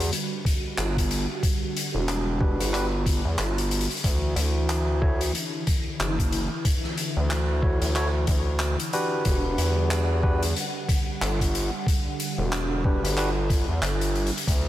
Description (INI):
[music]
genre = glitch hop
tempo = 92 BPM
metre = 4/4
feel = swing 59% on 16ths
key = E minor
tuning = A4 = 440 Hz
[part]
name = warm analog pad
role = sustained chords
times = 0.0-14.7 s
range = C#3 to F#5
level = -33 LUFS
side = right 1 dB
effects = chorus, sidechain pumping
[part]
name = gritty driven synth bass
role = bass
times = 0.0-14.7 s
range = E1 to E2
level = -25 LUFS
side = equal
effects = none
[part]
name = raw garage drum kit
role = drums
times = 0.0-14.6 s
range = handclaps, hi-hat, rim click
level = -30 LUFS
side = left 1 dB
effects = none
[part]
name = electronic kick drum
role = drums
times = 0.5-14.6 s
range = none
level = -24 LUFS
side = equal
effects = none
[part]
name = barky tine electric piano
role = stabs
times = 2.4-13.3 s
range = D4 to C#5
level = -30 LUFS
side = equal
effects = sidechain pumping, low-pass filter, ping-pong delay
[sound]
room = studio ambience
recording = none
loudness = -22 LUFS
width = side -13 dB against mid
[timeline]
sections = 0.0-14.7 A section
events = none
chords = 0.0 Em9; 4.0 Dadd9; 9.3 Em9